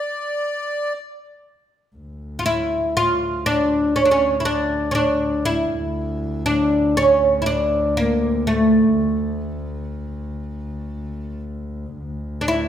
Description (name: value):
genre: arabic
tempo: 120 BPM (eighths)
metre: 10/8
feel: straight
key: D maqam nahawand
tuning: A4 = 441 Hz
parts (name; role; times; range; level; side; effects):
- oud; melody; 0.0-12.7 s; A3 to F4; -17 LUFS; equal; none
- accordion; second line; 0.0-0.9 s; D5; -24 LUFS; equal; light tremolo tuning
- warm double bass; drone; 2.0-12.7 s; D2; -28 LUFS; left 1 dB; none
room: wet recital hall reverb, RT60 1.4 s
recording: recorded in a church or concert hall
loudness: -17 LUFS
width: side -10 dB against mid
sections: 0.0-2.0 A section; 2.0-12.7 B section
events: none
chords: none